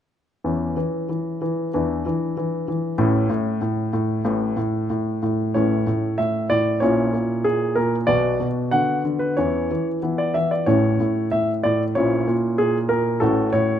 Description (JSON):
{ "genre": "classical-period piano sonatina", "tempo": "94 BPM", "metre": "2/4", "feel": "straight", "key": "A major", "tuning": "A4 = 440 Hz", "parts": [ { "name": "warm baby grand piano", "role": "solo", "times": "0.4-13.8 s", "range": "A1 to F#5", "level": "-19 LUFS", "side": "equal", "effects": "none" } ], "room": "light reverb", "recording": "close, detailed microphones", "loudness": "-19 LUFS", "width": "side -10 dB against mid", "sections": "0.4-5.5 A section; 5.5-13.8 B section", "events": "none", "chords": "0.4 C#m/E; 1.7 Dsus2/E; 3.0 A; 6.8 A#m7b5; 8.1 Bm; 8.7 Bm/D; 9.4 C#m/E; 10.0 E5; 10.7 A; 11.9 A#m7b5; 13.2 F#m/A" }